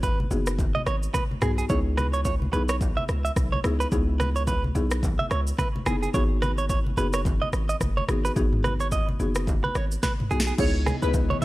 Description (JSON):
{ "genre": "afrobeats", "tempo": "108 BPM", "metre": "4/4", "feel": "swing 58% on 16ths", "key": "C# minor", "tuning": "A4 = 440 Hz", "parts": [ { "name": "direct-recorded clean electric guitar", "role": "riff", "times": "0.0-11.4 s", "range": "G#4 to E5", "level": "-30 LUFS", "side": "right 4 dB", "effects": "tape echo" }, { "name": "hard-hitting 808-style bass", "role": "bass", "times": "0.0-11.4 s", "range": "F#1 to C#2", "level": "-26 LUFS", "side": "equal", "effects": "none" }, { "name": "afro-pop drum kit", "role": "drums", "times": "0.0-11.4 s", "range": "crash cymbal, hi-hat, kick drum, rim click, shaker, snare drum, toms", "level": "-28 LUFS", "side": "equal", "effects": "none" }, { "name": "congas", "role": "percussion", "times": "0.0-11.4 s", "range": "none", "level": "-34 LUFS", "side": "left 1 dB", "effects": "none" }, { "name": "buzzing marimba with medium mallets", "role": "accompaniment", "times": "0.3-11.4 s", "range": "B3 to G#4", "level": "-31 LUFS", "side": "left 2 dB", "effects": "none" }, { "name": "glassy wavetable pluck", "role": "melody", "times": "10.6-11.1 s", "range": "B4 to C#5", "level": "-30 LUFS", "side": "equal", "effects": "chorus" }, { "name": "airy breathy pad", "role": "sustained chords", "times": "10.8-11.4 s", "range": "C#3 to D#5", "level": "-35 LUFS", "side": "left 2 dB", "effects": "chorus" } ], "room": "little or no reverb", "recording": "dry, gritty hardware recording", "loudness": "-22 LUFS", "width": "side -18 dB against mid", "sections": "0.0-10.6 A section", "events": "drum fill 10.0-10.6", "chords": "0.0 G#m7; 1.7 C#m9; 6.1 G#m7; 10.6 C#m9" }